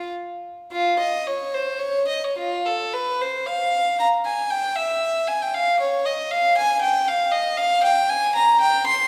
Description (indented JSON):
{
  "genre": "classical, baroque-style suite movement for unaccompanied violin",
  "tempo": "101-119 BPM",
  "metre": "3/4",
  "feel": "rubato",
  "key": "F minor",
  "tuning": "A4 = 441 Hz",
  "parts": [
    { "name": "warm violin", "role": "solo", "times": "0.0-9.1 s", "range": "F4 to C6", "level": "-22 LUFS", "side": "equal", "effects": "none" }
  ],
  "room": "wet recital hall reverb, RT60 1.6 s",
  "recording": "heard from further back in the room",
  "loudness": "-21 LUFS",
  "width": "mono",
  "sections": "0.7-9.1 A section",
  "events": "none",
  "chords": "none"
}